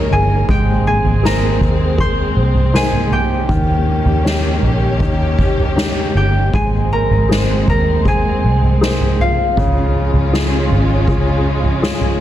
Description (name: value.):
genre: pop ballad.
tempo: 80 BPM.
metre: 4/4.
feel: straight.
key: Ab major.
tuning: A4 = 439 Hz.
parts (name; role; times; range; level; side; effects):
concert harp; melody; 0.0-11.7 s; F4 to C6; -21 LUFS; right 1 dB; none.
warm grand piano; accompaniment; 0.0-12.2 s; Db3 to C5; -22 LUFS; left 2 dB; none.
warm studio string section; sustained chords; 0.0-12.2 s; Db3 to Bb4; -22 LUFS; left 1 dB; none.
vintage muted fingered electric bass; bass; 0.0-12.2 s; G1 to Eb2; -17 LUFS; equal; none.
soft-mallet drum kit; drums; 0.1-12.2 s; kick drum, snare drum, toms; -18 LUFS; equal; none.
room: light reverb, small room ambience.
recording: dense, heavily limited modern master.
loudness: -13 LUFS.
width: side -12 dB against mid.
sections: 0.0-12.2 A section.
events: none.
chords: 0.5 Abadd9; 3.5 Eb7; 6.5 Abadd9; 9.6 Db.